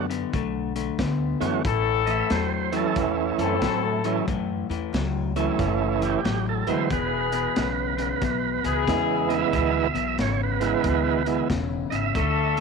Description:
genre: electric blues shuffle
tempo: 91 BPM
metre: 4/4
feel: swing 64% on 8ths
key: unclear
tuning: A4 = 440 Hz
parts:
  - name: tonewheel organ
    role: accompaniment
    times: 0.0-12.6 s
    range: E3 to E5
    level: -25 LUFS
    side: right 13 dB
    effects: slow rotary speaker, overdrive
  - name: electric guitar through a small old amp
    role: riff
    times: 0.0-12.6 s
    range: E2 to B3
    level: -29 LUFS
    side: left 13 dB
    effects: none
  - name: upright bass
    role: bass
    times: 0.0-12.6 s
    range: E1 to A2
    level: -29 LUFS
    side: equal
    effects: transformer saturation
  - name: crunchy breakbeat drum kit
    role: drums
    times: 0.1-12.6 s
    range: hi-hat, kick drum, snare drum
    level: -31 LUFS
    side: equal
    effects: none
  - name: mellow horn section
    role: stabs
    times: 1.6-12.6 s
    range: B3 to A4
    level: -27 LUFS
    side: left 12 dB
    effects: none
room: light reverb, studio ambience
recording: 1960s-style stereo with parts hard left and right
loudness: -22 LUFS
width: side -5 dB against mid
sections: 0.0-12.6 A section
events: none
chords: 0.0 D; 1.6 A; 6.9 E

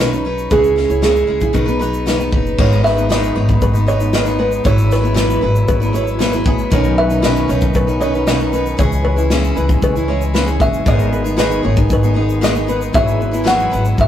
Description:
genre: acoustic pop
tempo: 116 BPM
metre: 4/4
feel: straight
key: unclear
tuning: A4 = 440 Hz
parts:
  - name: kalimba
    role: melody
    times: 0.0-14.1 s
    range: G#4 to F#5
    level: -19 LUFS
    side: right 1 dB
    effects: none
  - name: picked steel-string acoustic guitar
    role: accompaniment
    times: 0.0-14.1 s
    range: G#2 to B4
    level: -19 LUFS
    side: left 1 dB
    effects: none
  - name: flamenco guitar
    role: arpeggios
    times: 0.0-13.8 s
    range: G#4 to D#5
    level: -24 LUFS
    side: right 1 dB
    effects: none
  - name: upright bass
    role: bass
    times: 0.0-14.1 s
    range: F#1 to C#2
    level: -18 LUFS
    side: left 1 dB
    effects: none
  - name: natural country drum kit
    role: drums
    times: 0.0-14.1 s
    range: crash cymbal, kick drum, shaker, snare drum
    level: -19 LUFS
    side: left 1 dB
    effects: none
  - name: bright tonewheel organ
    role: sustained chords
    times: 2.6-14.1 s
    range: D#3 to E4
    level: -27 LUFS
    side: equal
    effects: overdrive, chorus vibrato, fast rotary speaker
room: moderate small room ambience, RT60 0.5 s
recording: rough rehearsal-room recording, tube saturation, faint mains hum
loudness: -13 LUFS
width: side -10 dB against mid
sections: 0.0-2.6 A section; 2.6-14.1 B section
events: none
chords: 0.0 Badd9; 0.5 C#m; 1.5 B; 2.6 G#m; 4.6 Eadd9/G#; 6.7 Badd9; 8.8 C#m; 10.9 G#m; 12.9 Eadd9/G#

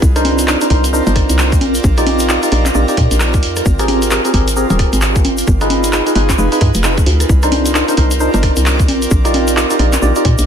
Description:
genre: UK garage, two-step garage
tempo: 132 BPM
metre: 4/4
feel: swing 60% on 16ths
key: C minor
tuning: A4 = 440 Hz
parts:
  - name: ethereal airy pad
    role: sustained chords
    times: 0.0-10.5 s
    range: C4 to G5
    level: -27 LUFS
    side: equal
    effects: none
  - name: hollow knocking FM bass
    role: bass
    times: 0.0-10.5 s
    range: Eb1 to Bb2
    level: -15 LUFS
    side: equal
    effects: none
  - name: electronic kick drum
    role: drums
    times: 0.0-10.4 s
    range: none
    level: -14 LUFS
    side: equal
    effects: overdrive
  - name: tube shaker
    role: percussion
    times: 0.0-10.5 s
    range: none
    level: -25 LUFS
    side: left 5 dB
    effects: none
  - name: airy breathy pad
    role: texture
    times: 0.0-10.5 s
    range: C4 to D5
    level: -21 LUFS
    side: right 4 dB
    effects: chorus, sidechain pumping
  - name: percussive organ stab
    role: stabs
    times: 0.2-10.5 s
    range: C4 to D5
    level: -17 LUFS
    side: equal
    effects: wide subtle chorus, tape echo
  - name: punchy analog drum machine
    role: drums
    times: 0.2-10.5 s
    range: congas, handclaps, hi-hat, rim click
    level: -18 LUFS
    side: equal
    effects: none
room: light reverb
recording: dense, heavily limited modern master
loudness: -11 LUFS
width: side -8 dB against mid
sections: 0.0-10.5 A section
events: none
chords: 0.0 Cm9; 1.6 Ebmaj9/Bb; 3.7 Abmaj9; 5.2 G7b9b13; 7.3 Cm9; 8.9 Ebmaj9/Bb

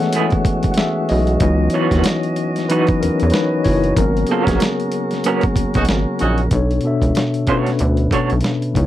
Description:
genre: R&B, neo-soul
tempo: 94 BPM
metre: 4/4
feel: swing 60% on 16ths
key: unclear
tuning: A4 = 441 Hz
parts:
  - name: mellow tine electric piano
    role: accompaniment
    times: 0.0-8.9 s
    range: B2 to F#5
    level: -18 LUFS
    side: left 3 dB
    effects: fast stereo tremolo
  - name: tonewheel organ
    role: sustained chords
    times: 0.0-6.5 s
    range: C#3 to D#5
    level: -25 LUFS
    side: right 2 dB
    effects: overdrive, stopped rotary speaker
  - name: dusty soul sampler-style drum kit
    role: drums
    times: 0.0-8.9 s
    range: hi-hat, kick drum, snare drum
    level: -20 LUFS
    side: right 1 dB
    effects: overdrive
  - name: electric guitar through a small old amp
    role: second line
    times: 0.1-8.3 s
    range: E3 to C#5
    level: -19 LUFS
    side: right 5 dB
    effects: tremolo
  - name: rubbery square bass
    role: bass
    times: 1.1-8.9 s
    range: F#1 to E2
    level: -18 LUFS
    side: right 1 dB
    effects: none
  - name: warm horn section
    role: stabs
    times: 5.8-6.4 s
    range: C#4 to F#4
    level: -21 LUFS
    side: right 2 dB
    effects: none
room: little or no reverb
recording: dry, close 1970s-style studio recording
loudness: -15 LUFS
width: side -13 dB against mid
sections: 0.0-6.5 A section; 6.5-8.9 B section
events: tine electric piano solo 0.0-6.5; band accent 4.0-6.5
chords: 0.0 F#m11; 1.4 C#m11; 4.0 G#m11; 6.5 Bm9

